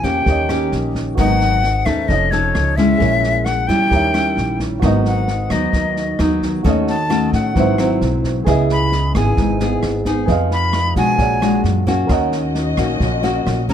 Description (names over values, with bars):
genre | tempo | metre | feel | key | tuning
bossa nova | 132 BPM | 4/4 | straight | G# minor | A4 = 440 Hz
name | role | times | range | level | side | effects
breathy bright silver concert flute | melody | 0.0-13.7 s | C#5 to B5 | -19 LUFS | left 3 dB | none
nylon-string guitar | accompaniment | 0.0-13.7 s | G#2 to A4 | -19 LUFS | left 1 dB | none
warm grand piano | accompaniment | 0.0-13.7 s | F#4 to F#5 | -25 LUFS | right 5 dB | none
upright bass | bass | 0.0-13.7 s | F1 to Cb3 | -20 LUFS | equal | none
open jazz drum kit | drums | 0.0-13.7 s | kick drum, rim click, snare drum | -25 LUFS | equal | none
warm studio string section | sustained chords | 12.1-13.7 s | C#4 to D#5 | -24 LUFS | left 3 dB | none
room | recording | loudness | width
little or no reverb | close, detailed microphones, lossy compression artefacts | -14 LUFS | side -9 dB against mid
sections
0.0-4.8 A section; 4.8-13.7 B section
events
flute solo 4.8-13.7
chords
0.3 D#7; 1.2 G#m7; 2.1 F7alt; 3.0 A#m7b5; 3.9 D#7b9; 4.8 G#m7; 6.6 D#m7b5; 7.6 G#7alt; 8.5 C#m7; 10.3 Fm7b5; 11.2 A#7alt; 12.1 D#m7